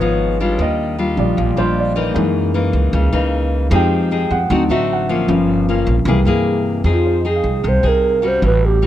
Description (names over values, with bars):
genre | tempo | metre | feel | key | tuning
bossa nova | 153 BPM | 4/4 | straight | F minor | A4 = 439 Hz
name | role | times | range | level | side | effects
nylon-string guitar | accompaniment | 0.0-8.9 s | Gb2 to Ab4 | -19 LUFS | left 3 dB | none
warm baby grand piano | accompaniment | 0.0-8.6 s | Fb3 to G5 | -20 LUFS | equal | none
upright bass | bass | 0.0-8.9 s | G1 to G2 | -18 LUFS | equal | none
mellow hollow wooden-headed alto flute | melody | 6.9-8.9 s | F4 to C5 | -17 LUFS | right 3 dB | none
room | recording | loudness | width
little or no reverb | close, detailed microphones | -14 LUFS | side -12 dB against mid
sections
0.0-6.9 A section; 6.9-8.9 B section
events
grand piano solo 0.0-6.9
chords
0.0 Db9; 0.6 Ebmaj9; 2.2 Gb13; 3.7 Fm7; 4.5 D7b9; 5.3 Gm7b5; 6.1 C7b13; 6.9 Fm7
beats
0.20 | 0.59 0.99 1.38 1.77 | 2.16 2.55 2.94 3.33 | 3.72 4.12 4.51 4.90 | 5.29 5.68 6.07 6.46 | 6.85 7.25 7.64 8.03 | 8.42 8.81